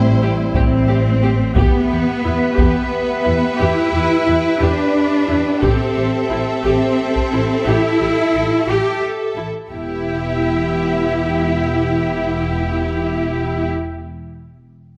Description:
cinematic, epic orchestral film score; 59 BPM (dotted quarters); 6/8; straight; E minor; A4 = 440 Hz
rich studio violin section; melody; 0.0-13.7 s; C5 to E5; -32 LUFS; equal
clear studio viola section; accompaniment; 0.0-13.7 s; E4 to G4; -28 LUFS; equal
dark trombone section; sustained chords; 0.0-1.2 s; G3 to C4; -28 LUFS; equal
warm French horn section; sustained chords; 0.0-13.7 s; B3 to B4; -28 LUFS; equal
dark symphonic double bass section; bass; 0.0-13.7 s; E1 to E2; -24 LUFS; equal
rich symphonic cello section; bass; 0.0-13.7 s; A2 to G4; -21 LUFS; equal
rich symphonic violin section; second line; 0.2-13.7 s; C4 to B4; -27 LUFS; equal
taiko ensemble; drums; 0.5-7.5 s; -21 LUFS; equal
wet recital hall reverb, RT60 1.7 s; -17 LUFS; mono
0.0-1.6 A section; 1.6-9.7 B section; 9.7-13.8 C section
0.0 Am7; 1.6 Em; 5.6 Am7; 9.7 Em

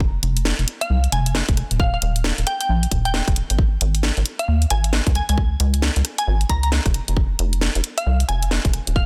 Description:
UK garage, two-step garage; 134 BPM; 4/4; swing 62% on 16ths; A4 = 440 Hz
rubbery square bass; bass; 0.0-9.1 s; Eb1 to Eb2; -22 LUFS; equal; sidechain pumping
electronic kick drum; drums; 0.0-9.1 s; -23 LUFS; equal; small room ambience
garage drum kit; drums; 0.2-8.9 s; hi-hat, rim click, snare drum; -26 LUFS; equal; small room ambience
glassy wavetable pluck; melody; 0.8-9.0 s; F5 to Bb5; -29 LUFS; equal; chorus, delay
little or no reverb; dense, heavily limited modern master; -20 LUFS; mono
0.0-9.1 A section
0.0 F5; 1.8 Eb5; 3.6 Ab5; 5.2 Db5; 6.9 F5

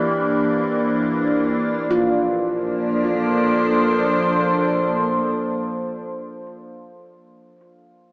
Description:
ambient; free time; Bb lydian; A4 = 442 Hz
evolving wavetable pad; sustained chords; 0.0-6.8 s; E3 to C5; -18 LUFS; equal; chorus, built-in reverb
handpan; arpeggios; 0.0-6.1 s; E4 to F4; -26 LUFS; equal; analog delay
dark symphonic cello section; bass; 0.0-5.3 s; Bb2; -38 LUFS; equal
wet spring reverb, RT60 2.4 s; echo-heavy mix, small speaker sound; -17 LUFS; side -31 dB against mid
0.0-1.9 A section; 1.9-6.4 B section
0.0 C9/Bb; 1.9 Bbmaj9

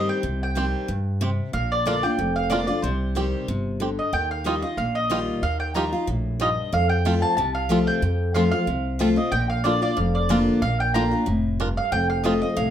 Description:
bluegrass; 185 BPM; 4/4; swing 54% on 8ths; A4 = 440 Hz
mandolin; melody; 0.0-12.7 s; C5 to Bb5; -26 LUFS; right 1 dB; slapback echo, plate reverb
picked steel-string acoustic guitar; accompaniment; 0.0-12.7 s; F2 to G4; -25 LUFS; left 2 dB
upright bass; bass; 0.0-12.7 s; F1 to G2; -26 LUFS; equal
bluegrass banjo; melody; 0.6-12.3 s; C4 to Bb4; -29 LUFS; right 4 dB; plate reverb
moderate small room reverb, RT60 0.5 s; -20 LUFS; side -10 dB against mid
0.0-4.1 A section; 4.1-12.7 B section
0.0 Cm; 1.5 Bb; 2.8 Cm; 4.1 Ebadd9; 6.7 F; 9.3 Bb; 11.9 F

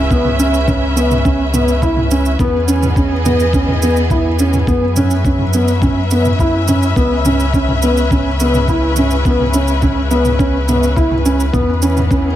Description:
piano and strings electronica; 105 BPM; 4/4; straight; C# minor; A4 = 438 Hz
rich symphonic string section; sustained chords; 0.0-12.4 s; C#3 to E5; -20 LUFS; left 1 dB; sidechain pumping
warm sub bass; bass; 0.0-12.4 s; C#2 to F#2; -17 LUFS; equal; tube saturation, sidechain pumping
felt-muted upright piano; riff; 0.1-12.3 s; B3 to E4; -16 LUFS; right 1 dB; ping-pong delay
electronic kick drum; drums; 0.1-12.2 s; -17 LUFS; equal
electronic shaker and toms; drums; 0.1-12.2 s; -23 LUFS; right 1 dB; overdrive
light reverb, digital ambience; -12 LUFS; side -12 dB against mid
0.0-12.4 A section
0.0 C#m7; 2.4 Emaj7; 4.7 F#7sus4; 7.0 C#m7; 11.5 E

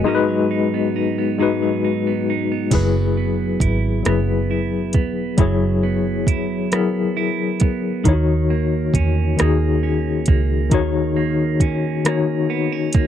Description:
slow six-eight R&B; 45 BPM (dotted quarters); 6/8; straight; A4 = 439 Hz
clean electric guitar; second line; 0.0-13.1 s; G#2 to E4; -24 LUFS; right 11 dB; spring reverb
tine electric piano; accompaniment; 0.0-13.1 s; D#3 to C#5; -20 LUFS; left 6 dB; medium tremolo
vintage muted fingered electric bass; bass; 2.7-13.1 s; E1 to E2; -21 LUFS; right 2 dB
smooth R&B drum kit; drums; 2.7-13.1 s; crash cymbal, hi-hat, kick drum, rim click; -17 LUFS; right 2 dB
little or no reverb; dry, close 1970s-style studio recording; -17 LUFS; side -10 dB against mid
0.0-2.7 A section; 2.7-13.1 B section
break 0.1-2.7
0.1 G#m7; 2.7 F#9sus4; 8.1 D#m7

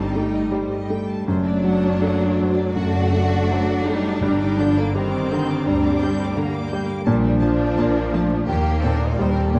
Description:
classical, romantic movement for piano and orchestra; 83 BPM; 4/4; rubato; G minor; A4 = 440 Hz
clear symphonic violin section; melody; 0.0-9.6 s; C5 to G6; -40 LUFS; equal
warm grand piano; melody; 0.0-9.6 s; Eb2 to Bb3; -24 LUFS; equal
warm symphonic violin section; second line; 0.0-9.6 s; Bb3 to D5; -27 LUFS; equal
warm studio viola section; accompaniment; 0.0-9.6 s; D3 to F4; -30 LUFS; equal
rich symphonic cello section; bass; 0.0-9.6 s; F3 to D4; -31 LUFS; equal
rich symphonic double bass section; bass; 0.0-9.6 s; F#1 to Eb2; -28 LUFS; equal
timpani; percussion; 4.2-5.3 s; G2; -34 LUFS; equal
moderate scoring stage reverb, RT60 1.7 s; dark, warm production, vinyl crackle; -20 LUFS; mono
0.0-9.6 A section
0.0 A7(b5, no3)/G; 1.3 D/F#; 4.2 Gm; 7.1 Bbmaj7; 8.5 Eb

